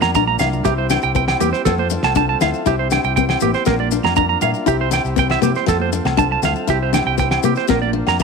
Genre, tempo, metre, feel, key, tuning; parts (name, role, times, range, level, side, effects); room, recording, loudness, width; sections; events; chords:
highlife guitar band; 119 BPM; 4/4; straight; C mixolydian; A4 = 439 Hz
picked steel-string acoustic guitar; accompaniment; 0.0-8.2 s; Bb3 to E4; -22 LUFS; left 17 dB
combo organ; sustained chords; 0.0-8.2 s; Bb3 to A4; -26 LUFS; equal
clean electric guitar; arpeggios; 0.0-8.2 s; G4 to Bb5; -19 LUFS; right 13 dB; tape echo
fingered electric bass; bass; 0.0-8.2 s; A1 to C3; -22 LUFS; left 1 dB
damped 70s drum kit; drums; 0.0-8.2 s; kick drum, snare drum; -24 LUFS; left 2 dB
agogo bells; percussion; 0.0-8.2 s; -28 LUFS; left 16 dB
congas; percussion; 0.0-8.2 s; -28 LUFS; right 12 dB
maracas; percussion; 0.0-8.2 s; -32 LUFS; left 18 dB
light reverb, small room reverb; 1960s-style stereo with parts hard left and right; -15 LUFS; side -4 dB against mid
0.0-8.2 A section
drum fill 0.3-0.7
0.0 Bb; 0.7 C; 1.7 F; 2.7 C; 3.7 Bb; 4.7 C; 5.7 F; 6.7 C; 7.7 Bb